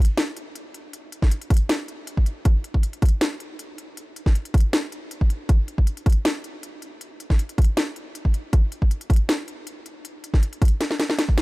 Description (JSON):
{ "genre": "future bass", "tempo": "158 BPM", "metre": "4/4", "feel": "half-time", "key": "none", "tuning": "none", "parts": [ { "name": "trap drum kit", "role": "drums", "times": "0.0-11.4 s", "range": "hi-hat, snare drum", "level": "-27 LUFS", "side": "equal", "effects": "none" }, { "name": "electronic kick drum", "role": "drums", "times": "1.2-11.4 s", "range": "none", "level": "-18 LUFS", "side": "equal", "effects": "none" } ], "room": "little or no reverb", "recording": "dark, warm production", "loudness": "-20 LUFS", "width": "side -22 dB against mid", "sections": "0.0-11.4 A section", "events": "drum fill 10.8-11.4", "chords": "none" }